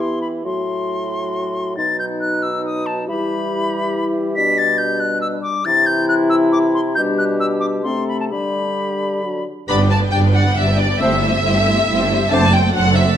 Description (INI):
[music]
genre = quick classical-period movement for symphony orchestra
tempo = 137 BPM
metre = 3/4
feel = rubato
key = E minor, G major from 4.4 s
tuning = A4 = 441 Hz
[part]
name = mellow clarinet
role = second line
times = 0.0-12.5 s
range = D#4 to C5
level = -25 LUFS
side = left 1 dB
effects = none
[part]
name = silver concert flute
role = second line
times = 0.0-12.5 s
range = A5 to B6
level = -21 LUFS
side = left 2 dB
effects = none
[part]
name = mellow bassoon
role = accompaniment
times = 0.0-12.5 s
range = A2 to B3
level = -24 LUFS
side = right 2 dB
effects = none
[part]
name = mellow French horn section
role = sustained chords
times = 0.0-12.5 s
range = E3 to G4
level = -23 LUFS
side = left 4 dB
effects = none
[part]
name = rich studio violin section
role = melody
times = 9.7-13.2 s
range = D5 to B5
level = -18 LUFS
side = left 1 dB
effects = none
[part]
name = rich studio violin section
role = second line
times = 9.7-13.2 s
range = F#4 to G5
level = -25 LUFS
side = equal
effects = none
[part]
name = rich chamber viola section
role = accompaniment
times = 9.7-13.2 s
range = F#3 to G4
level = -23 LUFS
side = right 1 dB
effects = none
[part]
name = clear studio double bass section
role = bass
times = 9.7-13.1 s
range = F#1 to G1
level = -20 LUFS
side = right 3 dB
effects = none
[part]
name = rich studio cello section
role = bass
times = 9.7-13.1 s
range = F#2 to G2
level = -18 LUFS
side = right 1 dB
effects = none
[sound]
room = moderate recital hall reverb, RT60 1.3 s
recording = close, detailed microphones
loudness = -15 LUFS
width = side -10 dB against mid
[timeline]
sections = 0.0-9.7 A section; 9.7-13.2 B section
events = none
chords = 0.4 F#dim/A; 1.8 B; 3.1 Em; 4.4 G/B; 5.7 C; 7.0 G/B; 7.8 Am/C; 8.3 G/D; 9.2 D; 9.7 G; 11.0 Am7/G; 12.3 D7/F#